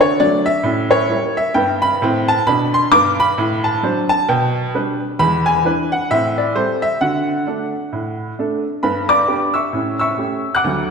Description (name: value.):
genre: jazz, stride piano.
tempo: 132 BPM.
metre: 4/4.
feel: swing 60% on 8ths.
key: G major.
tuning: A4 = 440 Hz.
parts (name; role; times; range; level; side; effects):
clear upright piano; solo; 0.0-10.9 s; D2 to F#6; -15 LUFS; equal; none.
room: wet scoring stage reverb, RT60 2.0 s.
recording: recorded in a church or concert hall.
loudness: -15 LUFS.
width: side -5 dB against mid.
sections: 0.0-8.8 A section; 8.8-10.9 B section.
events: none.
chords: 0.0 D; 0.7 A7b9; 1.6 G; 3.4 D7/A; 4.3 G/B; 5.2 E7; 6.1 Am7; 7.0 D; 8.8 G; 9.7 A7.